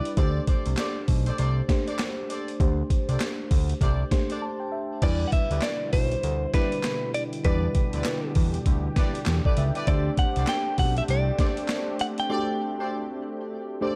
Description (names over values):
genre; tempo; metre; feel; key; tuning
R&B, new jack swing; 99 BPM; 4/4; swing 60% on 16ths; E minor; A4 = 441 Hz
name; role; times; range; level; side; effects
mellow FM electric piano; accompaniment; 0.0-14.0 s; G3 to C6; -34 LUFS; equal; chorus
warm horn section; stabs; 0.0-14.0 s; E4 to D5; -38 LUFS; equal; tape echo
boom bap sampler-style drum kit; drums; 0.1-12.3 s; crash cymbal, handclaps, hi-hat, kick drum, snare drum; -28 LUFS; equal; none
fat analog bass; bass; 0.2-11.3 s; B1 to E2; -28 LUFS; equal; none
group handclap; percussion; 0.8-11.9 s; none; -47 LUFS; equal; none
direct-recorded clean electric guitar; melody; 5.0-13.4 s; B4 to G5; -32 LUFS; equal; warbly pitch drift, tape echo
brassy analog pad; sustained chords; 5.0-14.0 s; B2 to G4; -37 LUFS; equal; chorus
room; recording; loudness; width
digital ambience; dark, warm production; -26 LUFS; mono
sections
0.0-5.0 A section; 5.0-14.0 B section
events
FM electric piano fill 3.8-5.0; break 4.4-5.0, 12.3-14.0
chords
0.2 D7sus4; 5.0 Em7; 9.9 D7sus4